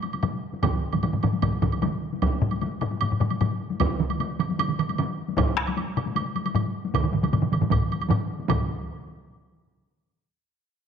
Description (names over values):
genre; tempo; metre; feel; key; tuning
japanese traditional, taiko drum ensemble; 153 BPM; 4/4; straight; none; none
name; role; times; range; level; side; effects
taiko ensemble; percussion; 0.0-8.7 s; none; -30 LUFS; left 7 dB; none
woodblock; percussion; 0.0-8.7 s; none; -32 LUFS; right 8 dB; none
taiko ensemble; percussion; 0.2-8.9 s; none; -27 LUFS; left 3 dB; none
taiko ensemble; percussion; 0.6-8.9 s; none; -27 LUFS; right 7 dB; none
taiko ensemble; percussion; 0.6-8.7 s; none; -28 LUFS; right 3 dB; none
room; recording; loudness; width
wet echo chamber reverb, RT60 1.6 s, studio ambience; 1960s-style stereo with parts hard left and right; -23 LUFS; side -7 dB against mid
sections
0.0-8.5 A section; 8.5-10.0 B section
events
speeding up 0.0-10.0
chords
none